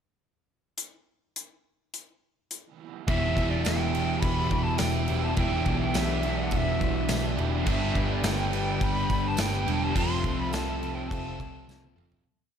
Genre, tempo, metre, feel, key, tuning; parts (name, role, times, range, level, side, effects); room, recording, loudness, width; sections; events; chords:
rock, shoegaze and dream pop; 105 BPM; 4/4; straight; A4 = 440 Hz
big rock drum kit; drums; 0.8-12.2 s; crash cymbal, hi-hat, kick drum, snare drum, toms; -31 LUFS; equal
bright reedy silver concert flute; melody; 3.1-12.0 s; D5 to C6; -33 LUFS; right 1 dB; tape echo
warm analog pad; sustained chords; 3.5-12.2 s; E3 to G5; -37 LUFS; left 1 dB; chorus
biting overdriven guitar; riff; 3.1-12.2 s; E2 to G3; -35 LUFS; equal
overdriven semi-hollow guitar; riff; 3.1-12.3 s; E3 to A4; -33 LUFS; right 10 dB; reverse reverb
thick fuzz guitar; riff; 3.1-12.2 s; E2 to G3; -33 LUFS; left 8 dB; distortion, analog chorus
vintage muted picked electric bass; bass; 3.1-12.2 s; E1 to C2; -31 LUFS; equal
tambourine; percussion; 3.6-11.8 s; -42 LUFS; right 9 dB
moderate plate reverb, RT60 2.1 s; dreamy mix soaked in reverb; -24 LUFS; side -8 dB against mid
0.8-3.1 pickup bar; 3.1-12.3 chorus
fade-out 10.0-12.3; drum fill 11.7-12.3
0.8 N.C.; 3.1 Em7; 10.0 Fmaj7